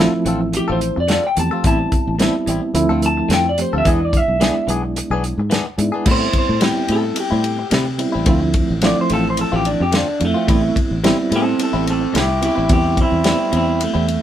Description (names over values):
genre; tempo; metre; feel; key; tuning
straight-eighth soul blues; 108 BPM; 4/4; swing 55% on 16ths; A minor; A4 = 440 Hz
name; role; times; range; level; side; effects
reed electric piano; accompaniment; 0.0-14.2 s; F3 to G4; -21 LUFS; right 2 dB; overdrive, fast tremolo
direct-recorded clean electric guitar; stabs; 0.0-14.1 s; A2 to A4; -25 LUFS; left 4 dB; none
fingered electric bass; bass; 0.0-14.2 s; A1 to C3; -21 LUFS; equal; none
warm soul drum kit; drums; 0.0-14.2 s; crash cymbal, hi-hat, kick drum, ride cymbal, snare drum; -20 LUFS; equal; none
electric guitar through a small old amp; melody; 0.6-14.2 s; A3 to A5; -20 LUFS; equal; none
room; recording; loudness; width
light reverb; band playing live in one room; -15 LUFS; side -11 dB against mid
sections
0.0-6.1 A section; 6.1-14.2 B section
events
clean electric guitar solo 6.1-14.2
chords
0.0 Dm7; 1.6 Am7; 2.7 Dm7; 3.9 E7; 6.1 Am7; 8.3 Dm7; 10.5 Am7